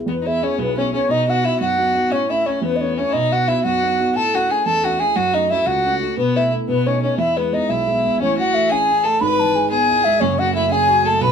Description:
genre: celtic folk, Celtic jig.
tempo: 118 BPM (dotted quarters).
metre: 6/8.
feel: straight.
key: E major.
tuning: A4 = 442 Hz.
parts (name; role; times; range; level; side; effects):
dark grand piano; accompaniment; 0.0-11.3 s; F#1 to G#4; -22 LUFS; right 2 dB; none.
mellow baroque flute; melody; 0.1-11.3 s; B4 to B5; -18 LUFS; right 1 dB; none.
clear fiddle; second line; 0.1-11.3 s; B3 to B4; -22 LUFS; left 6 dB; none.
room: moderate studio ambience, RT60 0.5 s.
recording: band playing live in one room.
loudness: -16 LUFS.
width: side -7 dB against mid.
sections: 0.1-8.2 A section; 8.2-11.3 B section.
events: none.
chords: 0.1 E; 1.1 B; 2.1 A; 3.1 B; 4.1 A; 5.2 F#m; 6.2 B7sus4; 6.7 B7; 7.2 E; 8.2 A; 9.2 E/G#; 10.2 F#madd9.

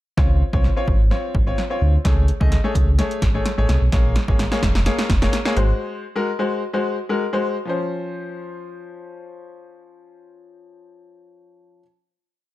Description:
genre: dance-pop.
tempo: 128 BPM.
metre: 4/4.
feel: straight.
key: Db major.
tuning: A4 = 440 Hz.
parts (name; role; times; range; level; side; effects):
clear concert grand piano; accompaniment; 0.2-11.8 s; F3 to Eb5; -25 LUFS; left 2 dB; sidechain pumping.
sub bass with octave; bass; 0.2-5.7 s; F1 to D2; -18 LUFS; equal; sidechain pumping.
punchy analog drum machine; drums; 0.2-5.7 s; hi-hat, kick drum, snare drum; -20 LUFS; equal; none.
room: little or no reverb.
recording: dark, warm production.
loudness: -17 LUFS.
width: side -16 dB against mid.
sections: 0.2-7.7 build; 7.7-11.4 final chord.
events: build-up 0.2-7.7; drum fill 0.2-5.8.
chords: 0.2 Dbmaj7; 2.0 Amaj7/C#; 3.9 Bbm7; 5.6 Ab7; 7.7 Dbmaj7.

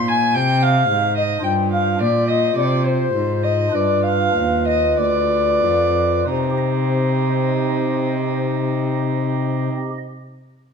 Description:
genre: classical, baroque-style sonata movement with continuo.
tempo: 45-57 BPM.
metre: 4/4.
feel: straight.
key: C minor.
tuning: A4 = 441 Hz.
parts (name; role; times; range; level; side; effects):
mellow baroque flute; melody; 0.0-9.7 s; C5 to Ab5; -21 LUFS; left 8 dB; none.
dark violin; second line; 0.0-9.7 s; Eb4 to Ab5; -24 LUFS; right 8 dB; none.
pipe organ, stopped flute; accompaniment; 0.0-10.0 s; D2 to Eb5; -23 LUFS; right 1 dB; none.
rich cello; bass; 0.0-9.7 s; D2 to C3; -22 LUFS; right 2 dB; none.
room: wet recital hall reverb, RT60 1.3 s.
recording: none.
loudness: -16 LUFS.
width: side -6 dB against mid.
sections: 0.0-6.3 A section; 6.3-10.7 B section.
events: slowing down 0.0-6.3.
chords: 0.0 Ab; 1.4 G7sus4; 3.7 G7; 6.3 Cm.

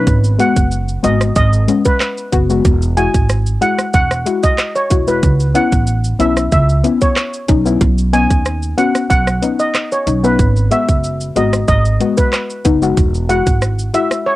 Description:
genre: dancehall.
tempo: 93 BPM.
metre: 4/4.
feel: straight.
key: unclear.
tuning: A4 = 440 Hz.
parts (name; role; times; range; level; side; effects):
steel pan; melody; 0.0-14.4 s; B4 to G#5; -18 LUFS; right 1 dB; cassette tape.
soft round pluck; accompaniment; 0.0-14.1 s; G#3 to F#4; -18 LUFS; left 5 dB; chorus, cassette tape.
upright bass; bass; 0.0-13.9 s; E1 to D#2; -16 LUFS; right 1 dB; none.
island pop drum kit; drums; 0.1-14.3 s; handclaps, hi-hat, kick drum, rim click, shaker; -16 LUFS; right 1 dB; cassette tape.
room: light reverb.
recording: home recording on cassette.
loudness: -12 LUFS.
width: side -16 dB against mid.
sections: 0.0-14.4 A section.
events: none.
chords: 0.1 G#m7; 2.7 Eadd9; 5.2 C#m7; 7.8 Badd9; 10.4 G#m7; 13.0 Eadd9.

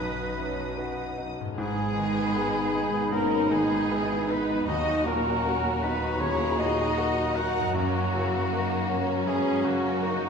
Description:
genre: cinematic, emotional film score for orchestra.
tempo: 78 BPM.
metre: 4/4.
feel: rubato.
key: G# minor.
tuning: A4 = 440 Hz.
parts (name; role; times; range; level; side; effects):
warm symphonic violin section; melody; 0.0-10.3 s; F#4 to D#6; -34 LUFS; left 6 dB; none.
dark studio violin section; second line; 0.0-10.3 s; A#3 to B4; -36 LUFS; left 2 dB; none.
warm oboe; second line; 0.0-10.3 s; F#4 to F#5; -36 LUFS; right 1 dB; none.
clear baby grand piano; accompaniment; 0.0-10.3 s; B1 to B4; -32 LUFS; left 1 dB; none.
clear symphonic viola section; accompaniment; 0.0-10.3 s; E3 to B4; -34 LUFS; right 3 dB; none.
concert harp; arpeggios; 0.0-10.3 s; F#2 to A#5; -37 LUFS; equal; none.
dark symphonic double bass section; bass; 0.0-10.3 s; G#1 to F#2; -36 LUFS; right 2 dB; none.
rich symphonic cello section; bass; 0.0-10.3 s; F#3 to F#4; -34 LUFS; right 4 dB; none.
dark cor anglais; melody; 1.6-10.3 s; F#4 to F#5; -32 LUFS; right 2 dB; none.
hollow concert flute; second line; 1.6-10.3 s; A#5 to B5; -36 LUFS; left 3 dB; none.
warm clarinet; second line; 1.6-10.3 s; D#4 to F#4; -36 LUFS; left 2 dB; none.
mellow French horn section; sustained chords; 1.6-10.3 s; B2 to F#4; -33 LUFS; left 2 dB; none.
room: wet recital hall reverb, RT60 1.4 s.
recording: recorded in a church or concert hall.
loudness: -24 LUFS.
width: side -6 dB against mid.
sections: 0.0-1.6 A section; 1.6-10.3 B section.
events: none.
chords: 0.0 B; 1.6 G#m; 4.7 D#m; 7.7 F#.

